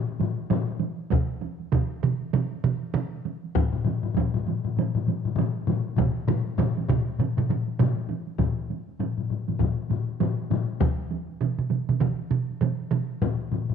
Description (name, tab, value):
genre	japanese traditional, taiko drum ensemble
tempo	99 BPM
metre	4/4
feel	swing 60% on 16ths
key	none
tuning	none
part	taiko ensemble	percussion	0.1-13.7 s	none	-30 LUFS	right 7 dB	none
part	solo taiko drums	percussion	0.2-13.7 s	none	-27 LUFS	left 6 dB	none
part	taiko ensemble	percussion	1.1-13.1 s	none	-26 LUFS	right 5 dB	none
part	taiko ensemble	percussion	1.1-13.4 s	none	-29 LUFS	left 4 dB	none
room	moderate echo chamber reverb, RT60 1.5 s, small room ambience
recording	1960s-style stereo with parts hard left and right, nothing above 10.7 kHz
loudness	-24 LUFS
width	side -7 dB against mid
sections	0.0-8.4 A section; 8.4-13.7 B section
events	none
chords	none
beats	0.52 | 1.13 1.73 2.34 2.95 | 3.56 4.16 4.77 5.37 | 5.98 6.58 7.19 7.79 | 8.40 9.00 9.61 10.21 | 10.81 11.42 12.02 12.62 | 13.22